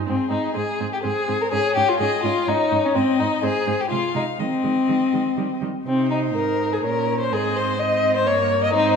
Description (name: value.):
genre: quick classical-period movement for string quartet.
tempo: 125 BPM.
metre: 3/4.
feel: straight.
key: Ab major.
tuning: A4 = 441 Hz.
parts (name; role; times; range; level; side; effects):
warm viola; accompaniment; 0.0-9.0 s; G3 to Eb4; -29 LUFS; right 5 dB; none.
clear cello; bass; 0.0-9.0 s; G2 to Eb3; -29 LUFS; right 6 dB; none.
rich violin; melody; 0.1-9.0 s; Ab4 to F5; -29 LUFS; left 8 dB; none.
rich violin; second line; 0.1-9.0 s; C4 to Eb5; -20 LUFS; left 2 dB; none.
room: wet scoring stage reverb, RT60 1.8 s.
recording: minimal, uncompressed stereo recording.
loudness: -19 LUFS.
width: side -6 dB against mid.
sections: 0.1-9.0 A section.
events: none.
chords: 0.1 Ab; 1.5 Db5/Ab; 3.0 Ab; 4.4 Ab/Eb; 5.4 Eb; 5.9 Ab/C; 6.8 Bbmadd9; 7.3 Ab; 8.3 Gdim.